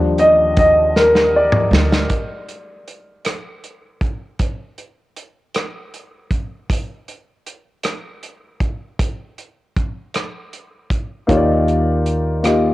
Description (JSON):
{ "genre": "slow gospel", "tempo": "52 BPM (dotted quarters)", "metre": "6/8", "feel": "straight", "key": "Eb major", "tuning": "A4 = 440 Hz", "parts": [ { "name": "warm baby grand piano", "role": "accompaniment", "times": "0.0-2.1, 11.3-12.7 s", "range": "Eb3 to Eb5", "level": "-14 LUFS", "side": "left 1 dB", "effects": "cassette tape" }, { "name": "upright bass", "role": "bass", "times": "0.0-2.1, 11.3-12.7 s", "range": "D2 to Eb2", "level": "-21 LUFS", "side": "right 1 dB", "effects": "none" }, { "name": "natural country drum kit", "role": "drums", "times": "0.2-12.6 s", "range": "hi-hat, kick drum, rim click, snare drum, toms", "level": "-20 LUFS", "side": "right 1 dB", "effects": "cassette tape" } ], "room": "moderate spring reverb, RT60 2.7 s", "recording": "home recording on cassette", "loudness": "-15 LUFS", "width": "side -17 dB against mid", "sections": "0.0-2.1 A section; 2.1-12.7 B section", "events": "grand piano solo 0.0-2.1; drum fill 1.0-2.1", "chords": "0.0 Ebmaj9; 2.1 N.C.; 11.3 Ebmaj9", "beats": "0.95 | 2.10 3.25 | 4.40 5.54 | 6.70 7.84 | 8.99 10.14 | 11.29 12.44" }